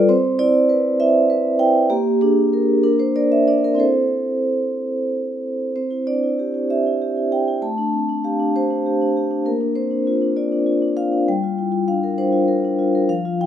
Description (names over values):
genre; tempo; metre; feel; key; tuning
classical, contemporary piece for solo vibraphone; 65 BPM (dotted quarters); 6/8; rubato; C major; A4 = 440 Hz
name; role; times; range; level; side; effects
vibraphone with soft mallets; solo; 0.0-13.5 s; F3 to A5; -17 LUFS; equal; none
room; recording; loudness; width
moderate recital hall reverb, RT60 1.4 s; close, detailed microphones; -17 LUFS; side -10 dB against mid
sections
0.0-5.8 A section; 5.8-13.5 B section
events
none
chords
0.1 Cmaj7; 1.9 Bb7; 3.8 C6; 5.8 Cadd9; 7.6 Am7; 9.5 Bbadd9; 11.3 Gm7